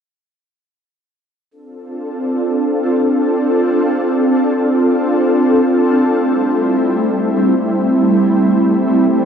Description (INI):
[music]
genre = drum and bass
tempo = free time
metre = none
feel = none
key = D minor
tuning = A4 = 440 Hz
[part]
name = ethereal airy pad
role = sustained chords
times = 1.9-9.3 s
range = G3 to A4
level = -12 LUFS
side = equal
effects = ensemble chorus, built-in reverb
[sound]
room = moderate plate reverb, RT60 2.9 s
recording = none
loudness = -12 LUFS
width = side -7 dB against mid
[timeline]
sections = 1.5-9.3 A section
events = none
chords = 1.5 Dm7; 6.0 Am7